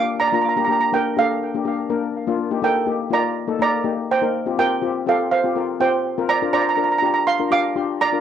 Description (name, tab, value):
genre	calypso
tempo	123 BPM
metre	4/4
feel	swing 54% on 16ths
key	Bb major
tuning	A4 = 440 Hz
part	steel pan	melody	0.0-8.2 s	A4 to D6	-19 LUFS	right 5 dB	tape echo
part	steel pan	accompaniment	0.0-8.2 s	Bb3 to C5	-22 LUFS	left 8 dB	cassette tape
room	moderate small room reverb, RT60 0.5 s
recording	home recording on cassette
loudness	-18 LUFS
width	side -9 dB against mid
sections	0.0-8.2 A section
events	none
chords	0.4 Gm7; 2.4 Ebmaj7; 4.3 Fsus2; 6.3 Bb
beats	| 0.44 0.93 1.42 1.90 | 2.39 2.88 3.36 3.85 | 4.34 4.83 5.31 5.80 | 6.29 6.78 7.26 7.75